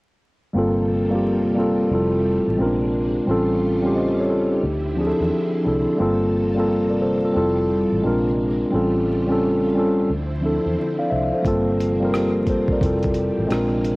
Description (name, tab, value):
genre	lo-fi hip hop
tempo	88 BPM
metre	4/4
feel	swing 66% on 16ths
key	G dorian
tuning	A4 = 440 Hz
part	mellow tine electric piano	accompaniment	0.5-14.0 s	F3 to F5	-19 LUFS	equal	cassette tape, low-pass filter
part	vintage muted fingered electric bass	bass	0.5-14.0 s	F1 to E2	-27 LUFS	equal	none
part	string machine, violins	sustained chords	0.6-14.0 s	C3 to A4	-31 LUFS	right 1 dB	ensemble chorus, low-pass filter
part	dusty soul sampler-style drum kit	drums	11.4-14.0 s	hi-hat, kick drum, rim click	-25 LUFS	equal	cassette tape
room	light reverb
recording	home recording on cassette, vinyl crackle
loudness	-18 LUFS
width	side -23 dB against mid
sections	0.5-14.0 A section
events	none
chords	0.5 Gm11; 1.9 Fmaj9; 2.6 Bb9; 3.3 A7alt; 4.6 Dm9; 6.0 Gm11; 7.4 Fmaj9; 8.0 Bb9; 8.7 A7alt; 10.1 Dm9; 11.4 Gm11; 12.8 Fmaj9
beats	| 0.54 1.22 1.90 2.58 | 3.27 3.95 4.63 5.31 | 5.99 6.67 7.36 8.04 | 8.72 9.40 10.08 10.77 | 11.45 12.13 12.81 13.49